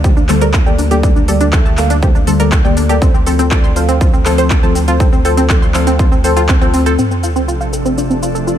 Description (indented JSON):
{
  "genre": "progressive house",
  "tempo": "121 BPM",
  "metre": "4/4",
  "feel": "straight",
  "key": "unclear",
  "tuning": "A4 = 440 Hz",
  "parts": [
    { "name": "glassy wavetable pluck", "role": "arpeggios", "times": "0.0-8.5 s", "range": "C4 to C6", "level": "-18 LUFS", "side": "right 1 dB", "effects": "chorus, sidechain pumping, ping-pong delay" },
    { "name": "deep mellow chord stab", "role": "stabs", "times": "0.0-6.9 s", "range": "D3 to F5", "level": "-16 LUFS", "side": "left 2 dB", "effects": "chorus, sidechain pumping, ping-pong delay" },
    { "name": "saturated sub bass", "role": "bass", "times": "0.0-7.0 s", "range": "D2", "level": "-16 LUFS", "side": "equal", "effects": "tube saturation, sidechain pumping" },
    { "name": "big-room dance drum kit", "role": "drums", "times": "0.0-8.6 s", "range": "handclaps, hi-hat, shaker", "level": "-22 LUFS", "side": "equal", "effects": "sidechain pumping on hats, sidechain pumping on perc" },
    { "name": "electronic kick drum", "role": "drums", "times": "0.0-6.6 s", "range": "none", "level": "-12 LUFS", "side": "equal", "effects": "none" },
    { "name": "shimmering ambient pad", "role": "sustained chords", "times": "7.3-8.6 s", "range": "C3 to A4", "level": "-20 LUFS", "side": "right 1 dB", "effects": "chorus, built-in reverb, sidechain pumping" },
    { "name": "sub drop", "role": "sound effects", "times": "7.0-8.6 s", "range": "none", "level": "-20 LUFS", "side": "right 1 dB", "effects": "none" }
  ],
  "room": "digital ambience",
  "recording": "none",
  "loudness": "-10 LUFS",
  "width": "side -10 dB against mid",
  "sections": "0.0-7.0 A section; 7.0-8.6 B section",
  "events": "filter sweep on synth stab 0.0-7.0; impact 7.0-8.6; filter sweep on synth arpeggio sound 7.0-8.6",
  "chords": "0.0 Gmadd9/D; 3.0 F/D; 7.0 Dm7"
}